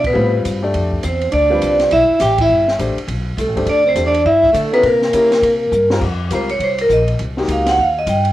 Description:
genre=modal jazz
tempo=204 BPM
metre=4/4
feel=swing 62% on 8ths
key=unclear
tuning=A4 = 441 Hz
part: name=vibraphone with medium hard mallets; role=melody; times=0.0-8.3 s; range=A4 to G5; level=-14 LUFS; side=equal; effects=cassette tape
part: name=clear tenor saxophone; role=second line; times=0.0-5.9 s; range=A3 to G4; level=-20 LUFS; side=right 3 dB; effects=cassette tape, plate reverb
part: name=upright bass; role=bass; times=0.0-8.3 s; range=G1 to D3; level=-21 LUFS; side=equal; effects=none
part: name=open jazz drum kit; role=drums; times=0.0-8.3 s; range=crash cymbal, hi-hat, kick drum, ride cymbal, snare drum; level=-27 LUFS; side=equal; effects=cassette tape
part: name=clear grand piano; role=accompaniment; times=0.1-7.8 s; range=G3 to D5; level=-22 LUFS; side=left 3 dB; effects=cassette tape, plate reverb
room=light reverb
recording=home recording on cassette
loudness=-13 LUFS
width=side -14 dB against mid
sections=0.0-6.0 A section; 6.0-8.3 B section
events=band accent 2.3; drum fill 5.7; vibraphone solo 6.0-8.3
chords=0.0 D13sus4; 4.8 C7b9; 6.0 F9sus4

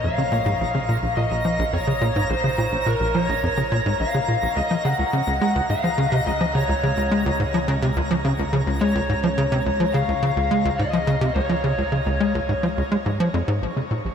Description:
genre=ambient, sequencer-driven space music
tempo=106 BPM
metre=4/4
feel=straight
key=unclear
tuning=A4 = 440 Hz
part: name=lead guitar through a small cranked amp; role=melody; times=0.0-13.0 s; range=Bb4 to Gb5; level=-25 LUFS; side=left 2 dB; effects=overdrive, ping-pong delay
part: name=tight sequencer bass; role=riff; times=0.0-14.1 s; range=Bb1 to Ab3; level=-22 LUFS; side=equal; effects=analog chorus, ping-pong delay
part: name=analog drone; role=bass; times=0.0-13.6 s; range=Bb1 to Db2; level=-31 LUFS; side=equal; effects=chorus
part: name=twinkling granular texture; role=texture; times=0.0-13.6 s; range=Bb5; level=-30 LUFS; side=right 1 dB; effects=built-in reverb
room=wet shimmer reverb, RT60 8.3 s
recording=none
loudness=-19 LUFS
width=side -7 dB against mid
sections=0.0-13.6 A section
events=none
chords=0.0 Bbm; 4.6 Db; 13.6 Bbm

